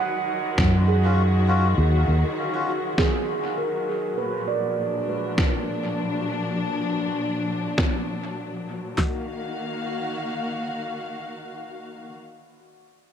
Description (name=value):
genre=ambient dub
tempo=100 BPM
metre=4/4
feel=swing 55% on 16ths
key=Eb minor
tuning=A4 = 441 Hz
part: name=dark studio string section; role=sustained chords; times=0.0-12.1 s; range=Bb2 to F5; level=-28 LUFS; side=left 2 dB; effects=none
part: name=handpan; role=arpeggios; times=0.0-12.6 s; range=Ab3 to Gb5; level=-29 LUFS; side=right 4 dB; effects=low-pass filter, dub echo
part: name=fingered electric bass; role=bass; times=0.6-2.2 s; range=Eb2 to Gb2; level=-18 LUFS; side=equal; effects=tube saturation
part: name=deep house drum kit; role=drums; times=0.6-9.1 s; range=handclaps, kick drum, snare drum, toms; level=-23 LUFS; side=equal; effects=none
part: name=electronic snare drum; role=drums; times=0.6-7.9 s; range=none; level=-27 LUFS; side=equal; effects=dub echo
part: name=melodica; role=stabs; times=1.0-2.7 s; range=Db4 to Gb4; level=-32 LUFS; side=left 3 dB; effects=vintage 12-bit sampler grit, dub echo
room=moderate echo chamber reverb, RT60 2.2 s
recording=none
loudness=-22 LUFS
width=side -8 dB against mid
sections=0.0-9.0 A section; 9.0-11.4 B section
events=filter sweep on handpan 0.0-9.0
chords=0.0 Ebm9; 4.2 Bb7; 9.0 Ebmadd9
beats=0.58 1.18 | 1.78 2.38 2.98 3.58 | 4.18 4.78 5.38 5.98 | 6.58 7.18 7.78 8.38 | 8.98 9.58 10.18 10.78